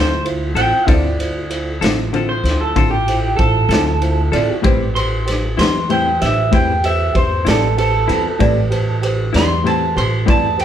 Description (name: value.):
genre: slow blues.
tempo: 64 BPM (dotted quarters).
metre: 12/8.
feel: straight.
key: A minor.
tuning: A4 = 441 Hz.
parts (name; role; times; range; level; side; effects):
electric guitar through a small old amp; second line; 0.0-10.6 s; G4 to C6; -19 LUFS; right 2 dB; none.
dark upright piano; accompaniment; 0.0-10.6 s; E4 to D5; -23 LUFS; right 3 dB; none.
semi-hollow electric guitar; accompaniment; 0.0-10.5 s; A2 to A4; -21 LUFS; left 6 dB; tremolo.
upright bass; bass; 0.0-10.6 s; A1 to E2; -19 LUFS; equal; none.
raw garage drum kit; drums; 0.3-10.6 s; kick drum, ride cymbal, snare drum; -20 LUFS; left 1 dB; none.
room: moderate large studio reverb, RT60 1.1 s.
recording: band playing live in one room.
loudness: -14 LUFS.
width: side -10 dB against mid.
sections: 0.0-10.6 A section.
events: clean electric guitar solo 0.0-10.6.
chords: 0.0 Dm7; 4.6 Am7.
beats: | 0.88 1.82 2.76 3.70 | 4.64 5.58 6.52 7.46 | 8.40 9.34 10.28.